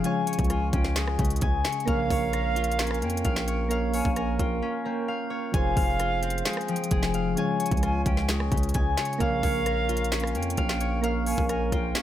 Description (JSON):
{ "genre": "hip hop, trap", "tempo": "131 BPM", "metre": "4/4", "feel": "half-time", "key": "unclear", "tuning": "A4 = 440 Hz", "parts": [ { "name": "soft electric-piano-like synth keys", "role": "accompaniment", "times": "0.0-12.0 s", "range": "Db3 to G5", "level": "-31 LUFS", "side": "right 4 dB", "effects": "chorus, tremolo" }, { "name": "concert harp", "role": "arpeggios", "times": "0.0-12.0 s", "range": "Db3 to Ab5", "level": "-30 LUFS", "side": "left 5 dB", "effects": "digital delay" }, { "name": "distorted 808-style bass", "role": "bass", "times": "0.0-11.9 s", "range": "F1 to F2", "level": "-29 LUFS", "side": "equal", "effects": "distortion" }, { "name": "trap drum kit", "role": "drums", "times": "0.0-12.0 s", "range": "handclaps, hi-hat, kick drum, rim click, snare drum", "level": "-28 LUFS", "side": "equal", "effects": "none" }, { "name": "concert flute", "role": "second line", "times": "0.3-11.9 s", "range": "F5 to Ab5", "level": "-33 LUFS", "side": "right 4 dB", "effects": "digital delay" } ], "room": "light reverb", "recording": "none", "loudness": "-24 LUFS", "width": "side -12 dB against mid", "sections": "0.0-12.0 A section", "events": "break 4.6-5.5", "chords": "0.0 Db; 1.9 Bbm; 5.5 Fm; 7.4 Db; 9.2 Bbm" }